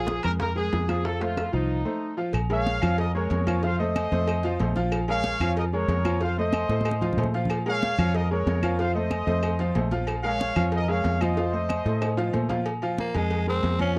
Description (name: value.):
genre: latin, salsa.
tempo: 186 BPM.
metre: 4/4.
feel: straight.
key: Bb minor.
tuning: A4 = 440 Hz.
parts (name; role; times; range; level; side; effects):
warm horn section; melody; 0.0-2.1 s; Eb4 to Bb4; -32 LUFS; equal; none.
bright upright piano; accompaniment; 0.0-14.0 s; F3 to F5; -32 LUFS; equal; none.
fingered electric bass; bass; 0.0-14.0 s; Bb1 to Bb2; -29 LUFS; equal; none.
bongos and cowbell; percussion; 0.1-14.0 s; none; -40 LUFS; equal; none.
congas; percussion; 0.1-14.0 s; none; -35 LUFS; equal; none.
timbales and agogo bells; percussion; 0.1-14.0 s; none; -38 LUFS; equal; none.
claves; percussion; 0.2-12.2 s; none; -42 LUFS; equal; none.
warm trumpet section; melody; 2.5-12.3 s; Bb4 to F5; -31 LUFS; equal; none.
raspy tenor saxophone; melody; 13.0-14.0 s; Ab3 to Db4; -31 LUFS; equal; none.
room: little or no reverb.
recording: cassette tape.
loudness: -26 LUFS.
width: mono.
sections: 0.0-2.3 A section; 2.3-12.7 B section; 12.7-14.0 C section.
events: drum fill 6.7-7.5, 12.0-12.7; tenor saxophone solo 12.7-14.0.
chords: 0.0 Bb5; 1.1 F7; 2.3 Bbm7; 3.6 F7; 4.9 Bbm7; 6.2 F7; 7.5 Bbm7; 8.8 F7; 10.1 Bbm7; 11.4 F7; 12.7 Bb5.